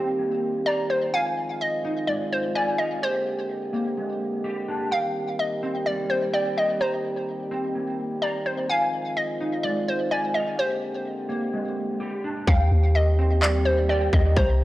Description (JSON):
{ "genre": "hip hop, atmospheric cloud-rap", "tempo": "127 BPM", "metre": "4/4", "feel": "half-time", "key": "Eb major", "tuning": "A4 = 441 Hz", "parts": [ { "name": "hollow square pluck", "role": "melody", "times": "0.0-14.6 s", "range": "C5 to F5", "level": "-26 LUFS", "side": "equal", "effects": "chorus, low-pass filter, tape echo" }, { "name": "dark French horn section", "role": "sustained chords", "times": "0.0-14.6 s", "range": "D3 to G4", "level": "-29 LUFS", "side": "right 1 dB", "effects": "sidechain pumping" }, { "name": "mellow electric guitar", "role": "arpeggios", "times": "0.0-14.6 s", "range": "G3 to Bb5", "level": "-30 LUFS", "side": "equal", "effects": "ensemble chorus, low-pass filter, tape echo" }, { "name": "soft 808-style bass", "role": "bass", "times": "12.5-14.6 s", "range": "C2 to Eb2", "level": "-20 LUFS", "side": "equal", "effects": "none" }, { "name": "trap drum kit", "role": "drums", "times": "12.5-14.5 s", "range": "handclaps, kick drum", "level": "-22 LUFS", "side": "equal", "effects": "overdrive" } ], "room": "light reverb", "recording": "dry, gritty hardware recording, cassette tape", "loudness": "-22 LUFS", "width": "side -16 dB against mid", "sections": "0.0-12.5 A section; 12.5-14.6 B section", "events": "hi-hats muted 12.5-14.6", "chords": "0.0 Eb6; 1.1 Fm7; 3.0 Bb13; 4.9 Eb6; 8.7 Fm7; 10.6 Bb13; 12.5 Eb6" }